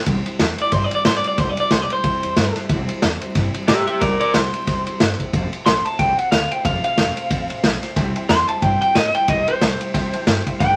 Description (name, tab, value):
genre	rockabilly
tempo	182 BPM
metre	4/4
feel	swing 58% on 8ths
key	C major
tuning	A4 = 440 Hz
part	picked steel-string acoustic guitar	accompaniment	0.0-10.8 s	C3 to C5	-31 LUFS	equal	none
part	upright bass	bass	0.1-10.7 s	F1 to A2	-29 LUFS	equal	none
part	vintage drum kit	drums	0.1-10.7 s	kick drum, ride cymbal, snare drum	-22 LUFS	equal	none
part	electric guitar through a small old amp	melody	0.6-10.8 s	G4 to C6	-22 LUFS	equal	none
part	honky-tonk upright piano	accompaniment	8.0-10.7 s	B4 to A5	-35 LUFS	equal	none
room	light reverb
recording	vinyl crackle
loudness	-19 LUFS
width	mono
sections	0.1-10.8 A section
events	clean electric guitar solo 0.1-10.8; honky-tonk piano fill 9.9-10.6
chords	0.1 C; 5.3 F; 8.0 C